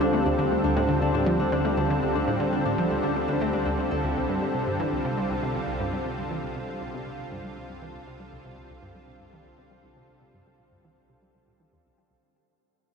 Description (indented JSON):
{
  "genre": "ambient, sequencer-driven space music",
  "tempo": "119 BPM",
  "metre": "4/4",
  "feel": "straight",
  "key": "unclear",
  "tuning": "A4 = 440 Hz",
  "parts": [
    { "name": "lush unison pad", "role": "sustained chords", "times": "0.0-12.2 s", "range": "D3 to A4", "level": "-27 LUFS", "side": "equal", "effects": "chorus, shimmer reverb" },
    { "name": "concert harp", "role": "arpeggios", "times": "0.0-6.6 s", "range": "C4 to A4", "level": "-32 LUFS", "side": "left 4 dB", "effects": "auto-pan, ping-pong delay, shimmer reverb" },
    { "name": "analog pluck", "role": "riff", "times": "0.0-12.2 s", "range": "C2 to A3", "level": "-30 LUFS", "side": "equal", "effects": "chorus, ping-pong delay, shimmer reverb" },
    { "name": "fat analog bass", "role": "bass", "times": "0.0-12.2 s", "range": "C2 to D2", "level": "-37 LUFS", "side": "equal", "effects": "none" }
  ],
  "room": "wet huge ambient reverb, RT60 8.1 s",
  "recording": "none",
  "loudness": "-24 LUFS",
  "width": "side -6 dB against mid",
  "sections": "0.0-12.2 A section",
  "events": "fade-out 0.0-12.2; filter sweep on synth arpeggio sound 0.0-12.2",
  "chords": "0.0 Dm; 4.2 Csus4",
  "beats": "| 0.13 0.64 1.14 1.64 | 2.15 2.65 3.16 3.66 | 4.16 4.67 5.17 5.68 | 6.18 6.68 7.19 7.69 | 8.20 8.70 9.21 9.71 | 10.21 10.72 11.22 11.73"
}